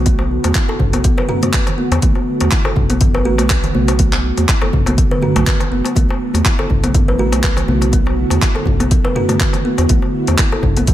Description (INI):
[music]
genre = afro house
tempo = 122 BPM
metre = 4/4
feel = swing 55% on 16ths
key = B minor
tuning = A4 = 440 Hz
[part]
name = ethereal airy pad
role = sustained chords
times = 0.0-10.9 s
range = D3 to F#4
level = -23 LUFS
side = right 3 dB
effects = ensemble chorus, built-in reverb, sidechain pumping
[part]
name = round analog bass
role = bass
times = 0.0-10.9 s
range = F#1 to E2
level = -19 LUFS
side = equal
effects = tube saturation, sidechain pumping
[part]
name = kalimba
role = arpeggios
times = 0.1-10.9 s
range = F#3 to B4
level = -20 LUFS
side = left 1 dB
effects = sidechain pumping, ping-pong delay
[part]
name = deep house drum kit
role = drums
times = 0.1-10.9 s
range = handclaps, hi-hat, toms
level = -21 LUFS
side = equal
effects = overdrive
[part]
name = electronic kick drum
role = drums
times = 0.1-10.9 s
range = none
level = -16 LUFS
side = equal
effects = overdrive
[part]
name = congas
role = percussion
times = 0.1-10.9 s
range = none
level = -25 LUFS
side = right 3 dB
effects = none
[part]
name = darbuka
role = percussion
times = 0.2-10.9 s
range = none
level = -24 LUFS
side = left 4 dB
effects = none
[sound]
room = light reverb, digital ambience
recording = none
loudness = -12 LUFS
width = side -13 dB against mid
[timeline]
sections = 0.0-10.9 A section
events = none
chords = 0.0 Bm7